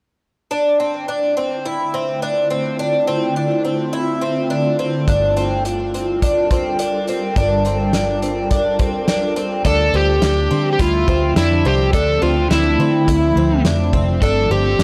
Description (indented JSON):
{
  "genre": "dream pop",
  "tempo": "105 BPM",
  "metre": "4/4",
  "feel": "straight",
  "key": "D minor",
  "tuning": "A4 = 441 Hz",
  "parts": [
    { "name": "ethereal airy pad", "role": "sustained chords", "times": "1.6-14.8 s", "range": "D3 to A5", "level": "-25 LUFS", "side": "equal", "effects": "ensemble chorus, built-in reverb, phaser, shimmer reverb" },
    { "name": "picked twelve-string acoustic guitar", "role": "arpeggios", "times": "0.5-14.8 s", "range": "C4 to E4", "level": "-22 LUFS", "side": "equal", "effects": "analog chorus, tape echo, shimmer reverb" },
    { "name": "vintage muted fingered electric bass", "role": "bass", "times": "5.1-14.8 s", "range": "F1 to D3", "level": "-22 LUFS", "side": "equal", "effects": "transformer saturation" },
    { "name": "loose indie drum kit", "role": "drums", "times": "5.1-14.8 s", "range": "hi-hat, kick drum, snare drum", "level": "-22 LUFS", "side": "equal", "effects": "none" },
    { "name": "overdriven slide guitar", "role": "melody", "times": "9.7-14.8 s", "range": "E4 to A4", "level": "-20 LUFS", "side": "equal", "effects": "tape echo, shimmer reverb" }
  ],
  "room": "moderate plate reverb, RT60 2.3 s",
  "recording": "dry, gritty hardware recording",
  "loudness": "-17 LUFS",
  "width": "mono",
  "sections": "0.5-9.7 A section; 9.7-14.8 B section",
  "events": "none",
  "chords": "0.5 Dm9; 5.1 Gm7; 9.7 Dm9; 14.2 Gm7",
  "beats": "| 0.51 1.08 1.65 2.22 | 2.79 3.37 3.94 4.51 | 5.08 5.65 6.22 6.79 | 7.37 7.94 8.51 9.08 | 9.65 10.22 10.79 11.37 | 11.94 12.51 13.08 13.65 | 14.22 14.79"
}